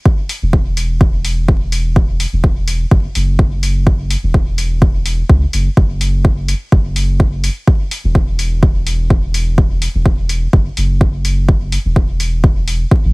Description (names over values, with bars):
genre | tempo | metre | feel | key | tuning
dub techno | 126 BPM | 4/4 | straight | unclear | A4 = 440 Hz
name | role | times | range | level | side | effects
electronic kick drum | drums | 0.1-13.0 s | none | -11 LUFS | equal | overdrive
electronic hi-hat | drums | 0.3-12.8 s | none | -24 LUFS | left 2 dB | overdrive
soft dub sub bass | bass | 0.4-13.1 s | E1 to C#2 | -16 LUFS | equal | sidechain pumping
room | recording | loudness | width
little or no reverb | heavily compressed radio sound, vinyl crackle | -12 LUFS | side -28 dB against mid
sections
0.0-13.1 A section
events
none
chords
none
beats
| 0.06 0.53 1.01 1.49 | 1.96 2.44 2.91 3.39 | 3.87 4.34 4.82 5.29 | 5.77 6.25 6.72 7.20 | 7.67 8.15 8.63 9.10 | 9.58 10.06 10.53 11.01 | 11.48 11.96 12.44 12.91